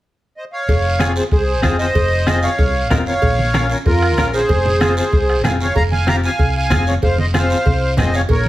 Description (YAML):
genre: latin, cumbia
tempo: 189 BPM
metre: 4/4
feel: straight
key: F minor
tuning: A4 = 440 Hz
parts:
  - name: accordion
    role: melody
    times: 0.4-8.5 s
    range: F4 to Bb5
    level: -18 LUFS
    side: right 1 dB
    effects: light tremolo tuning
  - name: hollow-body short-scale fingered electric bass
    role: bass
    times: 0.7-8.5 s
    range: F1 to F2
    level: -19 LUFS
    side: equal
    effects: none
  - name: bombo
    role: percussion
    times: 0.7-8.5 s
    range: none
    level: -20 LUFS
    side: left 1 dB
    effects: none
  - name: cowbell and timbales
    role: percussion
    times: 0.7-8.5 s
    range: none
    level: -26 LUFS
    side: right 4 dB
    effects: none
  - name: guiro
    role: percussion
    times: 0.7-8.5 s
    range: none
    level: -31 LUFS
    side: right 3 dB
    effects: none
  - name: semi-hollow electric guitar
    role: accompaniment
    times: 1.0-8.2 s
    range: C4 to Bb4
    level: -22 LUFS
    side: left 3 dB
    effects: tremolo
  - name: congas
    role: percussion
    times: 1.0-8.5 s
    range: none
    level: -23 LUFS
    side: right 2 dB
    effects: none
room: light reverb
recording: none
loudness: -14 LUFS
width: side -15 dB against mid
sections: 0.7-8.5 A section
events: none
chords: 0.0 N.C.; 0.7 Fm; 3.2 Bbm; 4.5 Fm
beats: 0.05 0.37 | 0.69 1.00 1.32 1.64 | 1.96 2.28 2.59 2.91 | 3.23 3.54 3.86 4.18 | 4.50 4.81 5.13 5.45 | 5.77 6.08 6.40 6.72 | 7.03 7.35 7.67 7.98 | 8.30